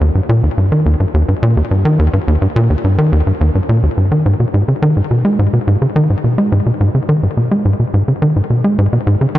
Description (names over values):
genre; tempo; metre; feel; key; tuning
ambient; 106 BPM; 4/4; straight; G# harmonic minor; A4 = 440 Hz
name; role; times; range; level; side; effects
tight sequencer bass; solo; 0.0-9.4 s; D#2 to G#3; -11 LUFS; equal; ping-pong delay
room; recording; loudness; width
light reverb; none; -11 LUFS; side -14 dB against mid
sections
0.0-4.3 A section; 4.3-9.4 B section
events
none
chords
none